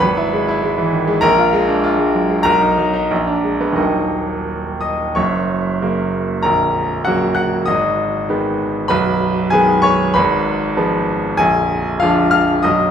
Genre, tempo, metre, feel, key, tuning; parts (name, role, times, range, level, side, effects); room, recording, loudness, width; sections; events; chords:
classical, virtuoso piano study; 96 BPM; 2/4; rubato; Eb minor, F# major from 5.2 s; A4 = 440 Hz
clear baby grand piano; solo; 0.0-12.9 s; A#0 to F#6; -14 LUFS; equal
wet recital hall reverb, RT60 1.4 s; minimal, uncompressed stereo recording; -14 LUFS; side -8 dB against mid
0.0-5.2 A section; 5.2-12.9 B section
0.0 E/G#; 1.2 Bb7; 2.5 Bmaj7; 3.1 Bb7b9; 3.8 Ebm; 5.2 F#; 6.4 F#/A#; 7.7 G#m; 8.9 G#m/B; 10.1 Fdim/Ab; 11.4 Bb7